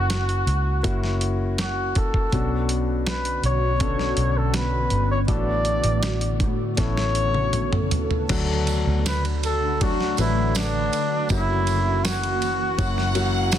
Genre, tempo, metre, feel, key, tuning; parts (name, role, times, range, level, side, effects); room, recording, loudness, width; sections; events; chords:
pop ballad; 81 BPM; 4/4; straight; D major; A4 = 440 Hz
warm flugelhorn; melody; 0.0-13.6 s; D4 to D5; -26 LUFS; equal; digital delay
warm concert grand piano; accompaniment; 0.0-13.6 s; A2 to B4; -29 LUFS; left 4 dB
vintage muted fingered electric bass; bass; 0.0-13.6 s; F#1 to A2; -24 LUFS; equal
dusty soul sampler-style drum kit; drums; 0.1-13.6 s; crash cymbal, hi-hat, kick drum, ride cymbal, snare drum, toms; -26 LUFS; right 1 dB
shimmering ambient pad; sustained chords; 3.0-13.6 s; C#3 to A4; -30 LUFS; equal; chorus, built-in reverb, phaser
tambourine; percussion; 8.3-13.6 s; -36 LUFS; right 15 dB
warm studio violin section; second line; 12.8-13.6 s; F#5; -28 LUFS; left 1 dB
studio ambience; dense, heavily limited modern master; -20 LUFS; side -10 dB against mid
0.0-8.3 A section; 8.3-13.6 B section
drum fill 6.8-8.3
0.0 F#7; 2.3 Bmadd9; 5.3 D/A; 6.8 Aadd9; 8.3 D; 11.3 F#7